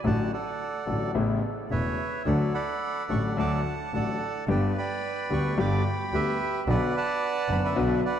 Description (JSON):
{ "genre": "tango", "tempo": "109 BPM", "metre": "4/4", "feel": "rubato", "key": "D major", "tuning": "A4 = 438 Hz", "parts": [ { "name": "warm grand piano", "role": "accompaniment", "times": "0.0-8.0 s", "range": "E1 to G4", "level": "-28 LUFS", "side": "left 4 dB", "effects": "none" }, { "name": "clear double bass", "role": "bass", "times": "0.0-8.0 s", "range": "E1 to D2", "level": "-29 LUFS", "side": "right 2 dB", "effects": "none" }, { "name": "bandoneon", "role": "melody", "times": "0.1-8.2 s", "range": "G4 to D6", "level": "-29 LUFS", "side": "right 4 dB", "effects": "diffuse ambient delay" } ], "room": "moderate lush hall reverb, RT60 2.5 s", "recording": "dreamy mix soaked in reverb", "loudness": "-25 LUFS", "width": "side -9 dB against mid", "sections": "0.0-8.2 A section", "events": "none", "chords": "0.0 D/A; 1.1 Aadd9; 2.3 D; 4.5 G; 6.7 Bm" }